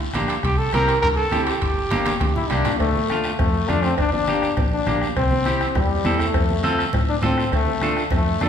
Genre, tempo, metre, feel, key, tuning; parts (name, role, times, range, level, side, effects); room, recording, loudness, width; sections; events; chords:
latin, cumbia; 203 BPM; 4/4; straight; G dorian; A4 = 442 Hz
fingered electric bass; bass; 0.0-8.5 s; G1 to A2; -26 LUFS; equal
clean electric guitar; accompaniment; 0.1-8.5 s; A3 to A4; -25 LUFS; right 1 dB
bombo; percussion; 0.1-8.5 s; -25 LUFS; left 1 dB
congas; percussion; 0.1-8.5 s; -29 LUFS; right 2 dB
guiro; percussion; 0.1-8.5 s; -36 LUFS; left 3 dB
timbales and cowbell; percussion; 0.2-8.5 s; -32 LUFS; right 4 dB
breathy trumpet; melody; 0.4-2.6 s; G4 to Bb4; -23 LUFS; right 2 dB
brilliant trombone; second line; 2.4-8.5 s; G3 to E4; -23 LUFS; left 5 dB
wet recital hall reverb, RT60 1.8 s; recorded in a church or concert hall; -18 LUFS; side -8 dB against mid
0.0-2.8 A section; 2.8-8.5 B section
drum fill 1.9-2.8; trombone solo 2.8-8.5
0.4 C; 1.6 Gm; 2.8 Dm; 4.0 Gm; 5.2 C; 6.3 F; 7.5 Dm